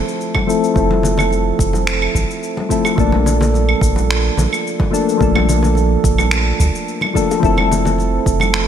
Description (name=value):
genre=sunset chillout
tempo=108 BPM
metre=4/4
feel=straight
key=F major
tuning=A4 = 440 Hz
part: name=soft electric-piano-like synth keys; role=accompaniment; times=0.0-8.7 s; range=F3 to A4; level=-17 LUFS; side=moving between left 5 dB and right 7 dB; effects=chorus, auto-pan, low-pass filter, digital delay
part: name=round analog bass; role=bass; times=0.0-8.7 s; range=F1 to D2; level=-18 LUFS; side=right 1 dB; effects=none
part: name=electronic shaker, claves and finger snaps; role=drums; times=0.1-8.7 s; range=none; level=-22 LUFS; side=right 1 dB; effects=none
part: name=electronic kick drum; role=drums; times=0.3-8.4 s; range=none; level=-19 LUFS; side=right 1 dB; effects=none
part: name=congas and bongos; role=percussion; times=0.3-8.5 s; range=none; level=-24 LUFS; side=left 3 dB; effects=none
room=moderate lush hall reverb, RT60 2.6 s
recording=bright 1980s-style digital production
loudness=-13 LUFS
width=side -9 dB against mid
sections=0.0-8.7 A section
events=filter sweep on synth keys 0.0-8.7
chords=0.0 Fmaj7; 3.0 Bbmaj7; 7.4 Fmaj7